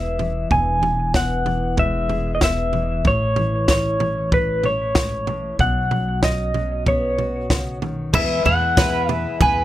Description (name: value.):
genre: indie folk with a building arrangement.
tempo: 94 BPM.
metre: 4/4.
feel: straight.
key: E major.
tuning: A4 = 440 Hz.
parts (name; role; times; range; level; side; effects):
electric guitar through a small old amp; melody; 0.0-9.6 s; B4 to G#5; -21 LUFS; equal; tremolo, analog delay.
fingerpicked steel-string acoustic guitar; accompaniment; 0.0-8.1 s; E2 to G#4; -27 LUFS; left 1 dB; none.
upright bass; bass; 0.0-9.6 s; E1 to E2; -25 LUFS; equal; none.
compact cocktail drum kit; drums; 0.2-9.6 s; crash cymbal, kick drum, snare drum, toms; -22 LUFS; equal; none.
picked twelve-string acoustic guitar; accompaniment; 8.1-9.6 s; E2 to E4; -28 LUFS; left 7 dB; none.
warm upright piano; accompaniment; 8.1-9.6 s; E2 to E5; -34 LUFS; right 5 dB; none.
mellow tonewheel organ; sustained chords; 8.1-9.6 s; E3 to B4; -33 LUFS; left 1 dB; slow rotary speaker, overdrive, chorus vibrato.
bowl-back mandolin; arpeggios; 8.1-9.6 s; E4 to B4; -27 LUFS; right 10 dB; none.
room: light reverb.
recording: none.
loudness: -18 LUFS.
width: side -14 dB against mid.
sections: 0.0-8.1 A section; 8.1-9.6 B section.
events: none.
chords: 0.0 E; 3.1 A; 5.6 Bsus2; 8.1 E.